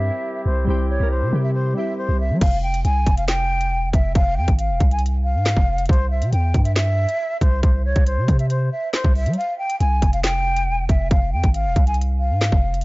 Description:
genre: hip hop, drill.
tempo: 138 BPM.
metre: 4/4.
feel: half-time.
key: F harmonic minor.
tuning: A4 = 440 Hz.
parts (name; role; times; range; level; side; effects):
breathy concert flute; melody; 0.0-12.8 s; C5 to Ab5; -24 LUFS; equal; low-pass filter.
glassy digital keys; accompaniment; 0.0-2.4 s; G3 to Bb4; -27 LUFS; left 1 dB; chorus, low-pass filter.
dark woodwind section; sustained chords; 0.0-2.4 s; C3 to G4; -31 LUFS; equal; low-pass filter.
long sustained 808-style bass; bass; 0.0-12.8 s; E1 to G3; -20 LUFS; equal; none.
drill drum kit; drums; 2.4-12.8 s; crash cymbal, handclaps, hi-hat, kick drum, snare drum; -19 LUFS; equal; none.
room: digital ambience.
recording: dark, warm production, nothing above 7.6 kHz.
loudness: -17 LUFS.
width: side -22 dB against mid.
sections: 0.0-2.4 A section; 2.4-12.8 B section.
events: break 9.4-9.8.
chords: 0.0 C; 2.4 Fmadd9; 5.9 C; 9.4 Fmadd9.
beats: 0.24 | 0.67 1.11 1.54 1.98 | 2.41 2.85 3.28 3.72 | 4.15 4.59 5.02 5.46 | 5.89 6.33 6.76 7.20 | 7.63 8.07 8.50 8.94 | 9.37 9.80 10.24 10.67 | 11.11 11.54 11.98 12.41.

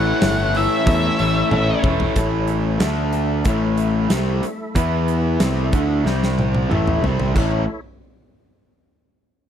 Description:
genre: classic rock.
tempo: 92 BPM.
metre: 4/4.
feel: straight.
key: A mixolydian.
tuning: A4 = 438 Hz.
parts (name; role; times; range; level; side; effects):
octave-fuzz lead guitar; melody; 0.0-1.8 s; E5 to F#5; -23 LUFS; equal; wah, distortion, tape echo.
picked steel-string acoustic guitar; accompaniment; 0.0-7.6 s; A2 to B4; -30 LUFS; left 8 dB; none.
warm upright piano; accompaniment; 0.0-2.0 s; C#4 to C#5; -31 LUFS; right 3 dB; none.
tonewheel organ; sustained chords; 0.0-7.8 s; A3 to G5; -32 LUFS; right 1 dB; none.
raw garage guitar; riff; 0.0-7.6 s; A2 to E4; -24 LUFS; left 12 dB; overdrive.
raw garage guitar; riff; 0.0-7.6 s; A2 to E4; -25 LUFS; right 15 dB; overdrive.
tight distorted guitar; riff; 0.0-2.2 s; A2 to A3; -27 LUFS; right 1 dB; distortion.
modern bright picked electric bass; bass; 0.0-7.7 s; E1 to E2; -21 LUFS; equal; none.
huge arena drum kit; drums; 0.2-7.5 s; crash cymbal, hi-hat, kick drum, snare drum, toms; -22 LUFS; equal; none.
room: little or no reverb.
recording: dry, close 1970s-style studio recording.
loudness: -17 LUFS.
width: side -9 dB against mid.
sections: 0.0-2.2 A section; 2.2-7.4 B section; 7.4-9.5 C section.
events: drum fill 1.5-2.2, 6.1-7.4.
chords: 0.0 A; 2.8 D5; 3.5 A; 4.8 E5; 5.4 A5; 6.1 C5; 6.7 A5; 7.4 A.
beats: 0.23 0.87 1.52 | 2.17 2.82 3.46 4.11 | 4.76 5.41 6.06 6.71 | 7.36.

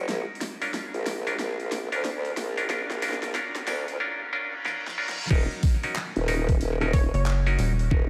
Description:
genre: glitch hop.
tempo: 92 BPM.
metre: 4/4.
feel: swing 63% on 16ths.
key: unclear.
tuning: A4 = 440 Hz.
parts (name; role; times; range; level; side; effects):
formant-sweep wobble bass; bass; 0.0-8.1 s; Eb1 to D2; -31 LUFS; equal; chorus, tube saturation, high-pass filter.
pop drum kit; drums; 0.1-7.9 s; crash cymbal, handclaps, hi-hat, rim click, snare drum; -37 LUFS; equal; overdrive.
overdriven clav; stabs; 0.6-7.7 s; Db4 to Bb4; -33 LUFS; equal; sidechain pumping, delay.
reverse cymbal; sound effects; 4.4-5.3 s; none; -41 LUFS; equal; none.
electronic kick drum; drums; 5.3-8.1 s; none; -24 LUFS; equal; overdrive.
sync lead; melody; 6.9-7.2 s; Db5; -41 LUFS; equal; subtle chorus, delay.
rubbery square bass; bass; 7.1-7.9 s; Eb1 to Gb1; -25 LUFS; equal; none.
room: moderate cathedral reverb, RT60 5.6 s.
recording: dreamy mix soaked in reverb, vinyl crackle, high-pass filter.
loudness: -27 LUFS.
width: mono.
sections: 0.0-5.3 A section; 5.3-8.1 B section.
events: build-up 0.0-5.3; drum fill 0.0-4.0, 4.7-5.3; filter sweep 0.0-5.3; reverse cymbal 4.4-5.3; drop 5.3-8.1.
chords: 0.1 Bb; 5.3 Ebm7.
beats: | 0.09 0.74 1.39 2.04 | 2.69 3.35 4.00 4.65 | 5.30 5.96 6.61 7.26 | 7.91.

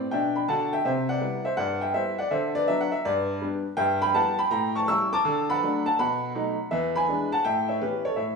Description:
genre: jazz, stride piano.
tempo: 164 BPM.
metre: 4/4.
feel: swing 66% on 8ths.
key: G major.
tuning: A4 = 439 Hz.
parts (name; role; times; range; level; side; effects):
clear baby grand piano; solo; 0.0-8.4 s; E2 to E6; -23 LUFS; equal; none.
room: wet large studio reverb, RT60 1.3 s.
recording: band playing live in one room, studio reverb.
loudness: -23 LUFS.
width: side -4 dB against mid.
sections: 0.0-8.4 A section.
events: none.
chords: 0.0 G; 0.8 Cmaj7; 2.3 D6; 3.0 G; 3.8 Em/G; 4.5 A7; 5.2 D; 6.0 B7; 6.7 E7; 7.4 A9.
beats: 0.12 0.48 | 0.85 1.22 1.58 1.95 | 2.31 2.68 3.04 3.41 | 3.78 4.14 4.51 4.88 | 5.24 5.61 5.97 6.34 | 6.71 7.07 7.44 7.80 | 8.17.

